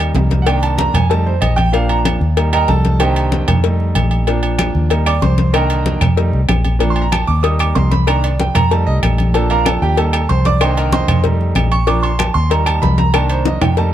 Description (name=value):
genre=latin, salsa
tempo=189 BPM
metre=4/4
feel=straight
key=Bb major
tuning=A4 = 439 Hz
part: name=bright upright piano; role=accompaniment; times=0.0-13.9 s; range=D3 to Eb6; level=-18 LUFS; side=right 4 dB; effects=none
part: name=vintage muted fingered electric bass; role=bass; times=0.0-13.9 s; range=Bb1 to F2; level=-15 LUFS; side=equal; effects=none
part: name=cowbell and bongos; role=percussion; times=0.0-13.9 s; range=none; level=-23 LUFS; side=left 11 dB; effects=none
part: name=congas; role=percussion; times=0.1-13.9 s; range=none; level=-21 LUFS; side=left 1 dB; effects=none
part: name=timbales and agogo bells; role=percussion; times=0.2-13.8 s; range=none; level=-23 LUFS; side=right 3 dB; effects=none
part: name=claves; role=percussion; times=4.6-13.8 s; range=none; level=-28 LUFS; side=left 7 dB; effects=none
room=little or no reverb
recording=dark, warm production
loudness=-12 LUFS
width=side -11 dB against mid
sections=0.0-13.9 A section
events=upright piano solo 0.0-13.9; drum fill 13.5-13.9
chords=0.5 Cm7; 1.1 F7; 1.7 Bb; 2.4 Eb; 3.0 Cm7; 3.6 F7; 4.3 Bb; 4.9 Eb; 5.5 Cm7; 6.2 F7; 6.8 Bb; 7.4 Eb; 8.1 Cm7; 8.7 F7; 9.3 Bb; 10.0 Eb; 10.6 Cm7; 11.2 F7; 11.9 Bb; 12.5 Eb; 13.1 Cm7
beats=0.15 | 0.47 0.79 1.10 1.42 | 1.74 2.05 2.37 2.69 | 3.00 3.32 3.64 3.96 | 4.27 4.59 4.91 5.22 | 5.54 5.86 6.17 6.49 | 6.81 7.12 7.44 7.76 | 8.07 8.39 8.71 9.03 | 9.34 9.66 9.98 10.29 | 10.61 10.93 11.24 11.56 | 11.88 12.19 12.51 12.83 | 13.14 13.46 13.78